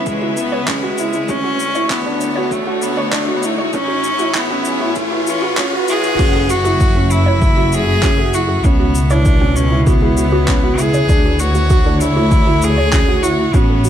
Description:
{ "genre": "piano and strings electronica", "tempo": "98 BPM", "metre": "4/4", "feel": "straight", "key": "F# minor", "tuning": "A4 = 440 Hz", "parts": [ { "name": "bright cello", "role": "melody", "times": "0.0-13.9 s", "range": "G#3 to G#4", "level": "-19 LUFS", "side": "left 1 dB", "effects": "ping-pong delay, shimmer reverb" }, { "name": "dark chamber string section", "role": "sustained chords", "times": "0.0-13.9 s", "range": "A2 to E5", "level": "-24 LUFS", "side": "left 1 dB", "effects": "shimmer reverb" }, { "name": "felt-muted upright piano", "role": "riff", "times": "0.0-13.8 s", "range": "C#4 to F#4", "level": "-21 LUFS", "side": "right 2 dB", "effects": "ping-pong delay, shimmer reverb" }, { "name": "dark chamber double bass section", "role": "bass", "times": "0.0-13.9 s", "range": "F#1 to D2", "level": "-19 LUFS", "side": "equal", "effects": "sidechain pumping" }, { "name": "riser", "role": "sound effects", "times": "0.8-6.2 s", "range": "none", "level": "-24 LUFS", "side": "equal", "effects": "none" }, { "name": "deep house drum kit", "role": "drums", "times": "0.1-13.9 s", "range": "crash cymbal, handclaps, shaker", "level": "-24 LUFS", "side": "left 1 dB", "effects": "high-pass filter on perc, high-pass filter on snare, high-pass filter on cymbals" }, { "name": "electronic kick drum", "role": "drums", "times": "0.1-13.7 s", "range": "none", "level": "-15 LUFS", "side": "equal", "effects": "none" }, { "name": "warbly dusty pluck", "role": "arpeggios", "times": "0.2-13.9 s", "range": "E4 to C#5", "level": "-25 LUFS", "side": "right 2 dB", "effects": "lush chorus, sidechain pumping, ping-pong delay, shimmer reverb" } ], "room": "light reverb, small room reverb", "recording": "high-pass filter", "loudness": "-12 LUFS", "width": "side -10 dB against mid", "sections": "0.0-6.2 A section; 6.2-13.9 B section", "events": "build-up 0.0-6.2; riser 0.8-6.2; drop 6.2-13.9", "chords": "0.0 C#m7; 1.3 Dmaj7; 3.7 Amaj9; 6.2 F#m7; 8.6 C#m7; 11.1 Dmaj7", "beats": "0.07 0.68 | 1.30 1.91 2.52 3.13 | 3.75 4.36 4.97 5.58 | 6.19 6.81 7.42 8.03 | 8.64 9.26 9.87 10.48 | 11.09 11.70 12.32 12.93 | 13.54" }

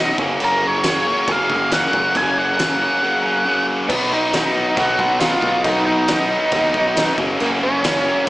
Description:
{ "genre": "quiet-loud alternative rock", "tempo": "137 BPM", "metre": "4/4", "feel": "straight", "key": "unclear", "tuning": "A4 = 444 Hz", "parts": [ { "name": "octave-fuzz lead guitar", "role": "melody", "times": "0.0-8.2 s", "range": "A#3 to G#5", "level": "-19 LUFS", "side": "equal", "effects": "distortion, slapback echo" }, { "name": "crunchy overdriven guitar", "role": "riff", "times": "0.0-8.3 s", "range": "F#2 to D#4", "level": "-20 LUFS", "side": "equal", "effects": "slapback echo" }, { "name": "growling picked electric bass", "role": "bass", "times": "0.0-8.1 s", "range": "F#1 to D#2", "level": "-28 LUFS", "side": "equal", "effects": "overdrive" }, { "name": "oversized low-tuned drum kit", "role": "drums", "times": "0.2-7.9 s", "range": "crash cymbal, kick drum, snare drum", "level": "-24 LUFS", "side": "equal", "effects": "none" } ], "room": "wet lush hall reverb, RT60 1.7 s, small room ambience", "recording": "big arena sound, small speaker sound", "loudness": "-15 LUFS", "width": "side -17 dB against mid", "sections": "0.0-3.9 A section; 3.9-8.3 A section", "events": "none", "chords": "0.2 F#; 3.9 B; 7.2 F#", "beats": "| 0.41 0.85 1.28 1.72 | 2.16 2.60 3.04 3.47 | 3.91 4.35 4.78 5.22 | 5.66 6.09 6.53 6.96 | 7.40 7.84 8.27" }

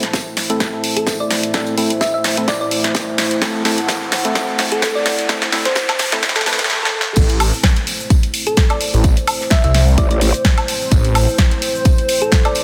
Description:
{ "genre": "bass house", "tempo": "128 BPM", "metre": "4/4", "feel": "swing 55% on 16ths", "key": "A dorian", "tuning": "A4 = 440 Hz", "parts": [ { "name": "dark analog pad", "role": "sustained chords", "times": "0.0-12.6 s", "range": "A3 to F#5", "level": "-26 LUFS", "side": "equal", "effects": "lush chorus, sidechain pumping" }, { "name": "percussive organ stab", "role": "stabs", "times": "0.0-6.6 s", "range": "A3 to B4", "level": "-26 LUFS", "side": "equal", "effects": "chorus, sidechain pumping, delay" }, { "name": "house drum kit", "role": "drums", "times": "0.0-12.6 s", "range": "crash cymbal, hi-hat, shaker, snare drum, woodblock", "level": "-21 LUFS", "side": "equal", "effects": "high-pass filter on hats, studio ambience, high-pass filter on snare, high-pass filter on perc, high-pass filter on cymbals" }, { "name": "riser and swell", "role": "sound effects", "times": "2.7-7.2 s", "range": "none", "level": "-31 LUFS", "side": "equal", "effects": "none" }, { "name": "crisp fusion drum kit", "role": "drums", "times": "0.1-12.6 s", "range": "hi-hat, snare drum, tambourine", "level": "-31 LUFS", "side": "equal", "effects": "none" }, { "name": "electronic kick drum", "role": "drums", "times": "0.1-12.4 s", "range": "none", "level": "-17 LUFS", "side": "equal", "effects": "high-pass filter on kick, studio ambience, high-pass filter on room" }, { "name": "thumb-piano-like synth pluck", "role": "melody", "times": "1.0-12.6 s", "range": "A4 to E5", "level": "-25 LUFS", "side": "equal", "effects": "subtle chorus, delay" }, { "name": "phased detuned saw bass", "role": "bass", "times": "7.2-11.3 s", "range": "A1 to C2", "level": "-17 LUFS", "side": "equal", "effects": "phaser, overdrive, sidechain pumping" }, { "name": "growl bass", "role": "bass", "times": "10.0-10.3 s", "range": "A1", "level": "-18 LUFS", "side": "equal", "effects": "chorus, overdrive, sidechain pumping" } ], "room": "moderate lush hall reverb, RT60 2.0 s", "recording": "dense, heavily limited modern master, high-pass filter", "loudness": "-16 LUFS", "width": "mono", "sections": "0.0-7.2 A section; 7.2-12.6 B section", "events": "build-up 0.0-7.2; drum fill 0.0-6.7, 6.7-7.2; filter sweep on synth stab 0.0-7.2; swell 6.2-7.2; drop 7.2-12.6", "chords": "0.0 Am", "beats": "0.14 0.60 1.07 | 1.54 2.01 2.48 2.95 | 3.42 3.89 4.36 4.82 | 5.29 5.76 6.23 6.70 | 7.17 7.64 8.11 8.57 | 9.04 9.51 9.98 10.45 | 10.92 11.39 11.86 12.32" }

